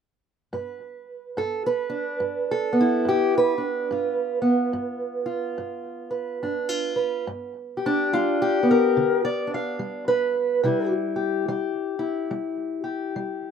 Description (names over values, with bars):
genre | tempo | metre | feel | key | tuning
acoustic country blues, solo or duo | 71 BPM | 4/4 | swing 61% on 8ths | G mixolydian | A4 = 436 Hz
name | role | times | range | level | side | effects
fingerpicked steel-string acoustic guitar | solo | 0.5-13.5 s | G2 to F5 | -22 LUFS | equal | slapback echo
room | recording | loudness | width
light reverb | recorded outdoors, with no room sound | -22 LUFS | side -7 dB against mid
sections
0.5-7.3 A section; 7.3-13.5 B section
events
none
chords
0.5 G7; 10.6 C